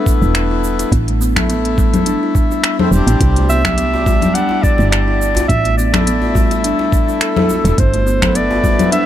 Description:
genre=organic downtempo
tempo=105 BPM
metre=4/4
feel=swing 55% on 16ths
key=unclear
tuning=A4 = 441 Hz
part: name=hand-pumped harmonium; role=accompaniment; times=0.0-9.1 s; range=G3 to E4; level=-21 LUFS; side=left 4 dB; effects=sidechain pumping, digital delay
part: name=kalimba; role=arpeggios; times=0.0-9.1 s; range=G3 to E4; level=-19 LUFS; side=equal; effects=digital delay
part: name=electronic kick drum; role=drums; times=0.1-8.8 s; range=none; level=-16 LUFS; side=right 1 dB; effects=none
part: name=organic electronic drum kit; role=drums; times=0.1-9.1 s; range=congas, finger snaps, hi-hat, shaker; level=-18 LUFS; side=left 2 dB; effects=none
part: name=woody FM bass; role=bass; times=0.2-8.9 s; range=E1 to C2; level=-17 LUFS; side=right 1 dB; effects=none
part: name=djembe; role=percussion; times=3.4-8.9 s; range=none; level=-26 LUFS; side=left 3 dB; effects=none
part: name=mellow clarinet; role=melody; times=3.5-9.1 s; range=A4 to F#5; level=-18 LUFS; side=right 1 dB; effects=ping-pong delay
room=studio reverb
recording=none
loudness=-12 LUFS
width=side -11 dB against mid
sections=0.0-9.1 A section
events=none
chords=0.0 G6 (rootless); 0.9 Am; 3.2 Csus2; 5.5 G6

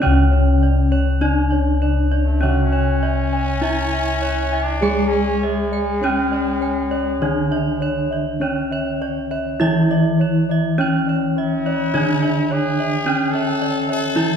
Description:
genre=gamelan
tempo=51 BPM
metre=4/4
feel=uneven beats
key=C# pelog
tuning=A4 = 440 Hz
part: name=gamelan-type bronze metallophone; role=melody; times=0.0-14.4 s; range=C#4 to G#4-30c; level=-22 LUFS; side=equal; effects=none
part: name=gamelan-type bronze metallophone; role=accompaniment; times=0.0-14.4 s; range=C#3 to G#3-30c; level=-23 LUFS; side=right 1 dB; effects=none
part: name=gamelan-type bossed gongs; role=arpeggios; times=0.0-14.4 s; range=C#5 to G#5-30c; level=-29 LUFS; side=left 2 dB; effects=none
part: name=gamelan-type bronze metallophone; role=arpeggios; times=0.0-14.4 s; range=C#5 to G#5-30c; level=-27 LUFS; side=right 4 dB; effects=none
part: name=gamelan-type bossed gongs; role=bass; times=0.0-14.4 s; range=C#2 to G#4-30c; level=-22 LUFS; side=left 1 dB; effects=none
part: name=growling trumpet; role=second line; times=2.2-14.4 s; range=G#3-29c to A4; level=-26 LUFS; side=left 3 dB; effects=none
room=wet recital hall reverb, RT60 1.3 s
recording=recorded in a church or concert hall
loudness=-16 LUFS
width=side -7 dB against mid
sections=0.0-14.4 A section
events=none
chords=none

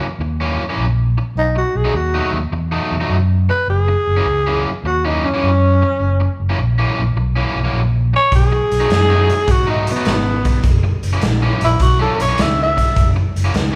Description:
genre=electric blues shuffle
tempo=103 BPM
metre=4/4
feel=swing 68% on 8ths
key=F# mixolydian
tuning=A4 = 439 Hz
part: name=crunchy overdriven guitar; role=riff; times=0.0-13.8 s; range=F#2 to D#4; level=-25 LUFS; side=equal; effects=none
part: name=fingered electric bass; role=bass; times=0.2-13.8 s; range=F#1 to G#2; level=-20 LUFS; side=equal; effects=none
part: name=growling tenor saxophone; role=melody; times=1.4-13.2 s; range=B3 to E5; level=-20 LUFS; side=equal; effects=none
part: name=raw garage drum kit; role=drums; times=8.3-13.7 s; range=hi-hat, kick drum, snare drum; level=-20 LUFS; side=equal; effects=none
room=moderate large studio reverb, RT60 1.4 s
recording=band playing live in one room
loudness=-16 LUFS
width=mono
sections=0.0-13.8 A section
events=none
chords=0.0 F#7; 1.4 B7; 3.7 F#7; 8.3 B7; 10.6 F#7

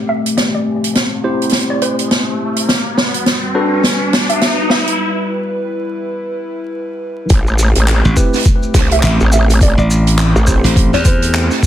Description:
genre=glitch hop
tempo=104 BPM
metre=4/4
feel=swing 59% on 16ths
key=A dorian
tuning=A4 = 441 Hz
part: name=dark analog pad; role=sustained chords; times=0.0-11.7 s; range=G3 to B4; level=-21 LUFS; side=left 1 dB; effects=chorus, vintage 12-bit sampler grit, sidechain pumping
part: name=riser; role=sound effects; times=0.7-5.0 s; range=none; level=-21 LUFS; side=left 1 dB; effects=none
part: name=woody wave-folded pluck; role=melody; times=0.1-4.9, 8.9-11.7 s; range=C5 to E5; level=-21 LUFS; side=right 1 dB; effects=lush chorus, vintage 12-bit sampler grit, ping-pong delay
part: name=open jazz drum kit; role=drums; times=0.3-11.6 s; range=handclaps, hi-hat, snare drum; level=-17 LUFS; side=right 1 dB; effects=soft clipping on snare
part: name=bright tine electric piano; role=stabs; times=1.2-3.8, 8.2-11.7 s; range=C4 to C5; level=-19 LUFS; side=equal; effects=medium stereo tremolo, sidechain pumping, low-pass filter, ping-pong delay
part: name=growl bass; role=bass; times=7.3-10.6 s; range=A1 to C2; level=-12 LUFS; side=equal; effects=chorus
part: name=electronic kick drum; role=drums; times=7.3-11.7 s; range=none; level=-12 LUFS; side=equal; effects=overdrive
part: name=maracas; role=percussion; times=7.3-11.7 s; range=none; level=-25 LUFS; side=equal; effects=none
part: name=glassy slap bass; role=bass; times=8.1-11.5 s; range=A1 to E2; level=-12 LUFS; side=equal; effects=none
room=moderate studio reverb, RT60 0.6 s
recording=dense, heavily limited modern master, vinyl crackle, high-pass filter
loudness=-11 LUFS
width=side -11 dB against mid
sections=0.0-7.3 A section; 7.3-11.7 B section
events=build-up 0.0-7.3; drum fill 0.0-5.0; filter sweep 0.0-7.3; riser 0.7-5.0; break 5.0-7.3; drop 7.3-11.7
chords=0.0 Am7; 2.7 Gmaj7; 7.3 Am7

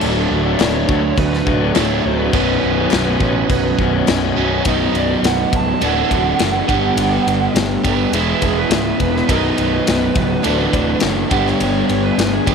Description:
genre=classic rock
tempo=104 BPM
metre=4/4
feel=straight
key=unclear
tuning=A4 = 441 Hz
part: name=bright reed electric piano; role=accompaniment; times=0.0-12.5 s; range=A3 to G5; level=-28 LUFS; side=left 13 dB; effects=fast tremolo
part: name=picked plugged-in twelve-string acoustic guitar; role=accompaniment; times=0.0-12.5 s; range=G2 to G#4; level=-29 LUFS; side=right 11 dB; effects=none
part: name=bright tonewheel organ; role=sustained chords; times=0.0-4.6 s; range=A3 to C#5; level=-28 LUFS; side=equal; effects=none
part: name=crunchy overdriven guitar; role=riff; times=0.0-12.5 s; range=B1 to G4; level=-21 LUFS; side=left 12 dB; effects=spring reverb
part: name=overdriven electric guitar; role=riff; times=0.0-12.5 s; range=B1 to G4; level=-20 LUFS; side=right 13 dB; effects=none
part: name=fuzz picked electric bass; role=bass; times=0.0-12.5 s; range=B0 to D2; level=-21 LUFS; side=equal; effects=overdrive
part: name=big rock drum kit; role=drums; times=0.0-12.5 s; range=crash cymbal, kick drum, ride cymbal, snare drum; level=-21 LUFS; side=left 3 dB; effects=none
part: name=smooth overdriven lead guitar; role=melody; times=0.6-12.5 s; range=G#4 to A5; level=-23 LUFS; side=right 5 dB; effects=none
part: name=group handclap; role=percussion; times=0.6-4.2 s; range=none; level=-31 LUFS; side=left 15 dB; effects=none
room=studio reverb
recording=1960s-style stereo with parts hard left and right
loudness=-14 LUFS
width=side -6 dB against mid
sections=0.0-4.7 A section; 4.7-12.5 B section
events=lead electric guitar solo 4.7-12.5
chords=0.0 D; 2.3 Badd9; 4.7 B; 5.8 Dadd9; 6.7 G; 8.1 E; 9.3 B; 10.4 Dadd9; 11.3 G

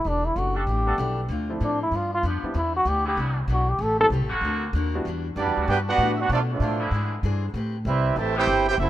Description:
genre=jazz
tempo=192 BPM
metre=4/4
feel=swing 63% on 8ths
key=E minor from 5.0 s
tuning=A4 = 440 Hz
part: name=bright trombone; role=melody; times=0.0-4.1 s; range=D4 to A4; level=-24 LUFS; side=equal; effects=none
part: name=picked steel-string acoustic guitar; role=accompaniment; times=0.0-8.9 s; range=G2 to B#4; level=-35 LUFS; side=left 8 dB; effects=none
part: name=upright bass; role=bass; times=0.0-8.9 s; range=E1 to B2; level=-26 LUFS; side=equal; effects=none
part: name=muted trombone section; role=sustained chords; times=0.5-8.4 s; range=C3 to A4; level=-32 LUFS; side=right 1 dB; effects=none
part: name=warm upright piano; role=accompaniment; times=0.9-5.0 s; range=F3 to F#5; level=-33 LUFS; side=equal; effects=none
part: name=clear trumpet section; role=melody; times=5.4-8.9 s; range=B3 to A5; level=-27 LUFS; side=right 3 dB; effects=none
part: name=clear trombone section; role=second line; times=5.4-8.9 s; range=C3 to G4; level=-24 LUFS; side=right 4 dB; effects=none
room=little or no reverb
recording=rough home demo mix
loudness=-22 LUFS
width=side -13 dB against mid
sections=0.0-5.0 A section; 5.0-8.9 B section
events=trombone solo 0.0-5.0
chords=0.1 Em11; 1.3 Dm7; 1.9 G7; 2.6 Cmaj9; 3.8 Am9; 4.4 Daug7; 5.0 Em9; 6.3 Bm7b5; 6.9 E7alt; 7.5 Am9

